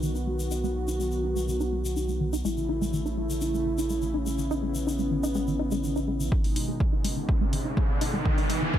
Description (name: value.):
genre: melodic techno.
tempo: 124 BPM.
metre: 4/4.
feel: straight.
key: G# phrygian.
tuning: A4 = 440 Hz.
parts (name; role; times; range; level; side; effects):
soft octave-layered synth lead; melody; 0.0-8.8 s; C#4 to F#4; -32 LUFS; left 1 dB; chorus, tremolo, sidechain pumping, ping-pong delay.
warm analog pad; sustained chords; 0.0-8.8 s; B2 to F#4; -34 LUFS; right 2 dB; wide subtle chorus, sidechain pumping.
tight sequenced synth; arpeggios; 0.0-8.8 s; D#3 to D#4; -32 LUFS; equal; chorus, sidechain pumping, ping-pong delay.
round analog bass; bass; 0.0-6.3 s; A1 to B1; -31 LUFS; equal; sidechain pumping.
egg shaker; percussion; 0.0-6.3 s; none; -41 LUFS; left 5 dB; none.
electronic kick drum; drums; 6.3-8.8 s; none; -25 LUFS; equal; none.
riser; sound effects; 7.0-8.8 s; none; -31 LUFS; right 1 dB; none.
electronic hi-hat; drums; 6.4-8.6 s; none; -36 LUFS; left 1 dB; high-pass filter on hats.
room: light reverb, digital ambience.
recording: none.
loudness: -25 LUFS.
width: side -11 dB against mid.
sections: 0.0-6.3 A section; 6.3-8.8 B section.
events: filter sweep on soft synth lead 0.0-6.3; build-up 6.3-8.8; riser 7.0-8.8.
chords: 0.0 B; 2.4 A; 6.3 G#m.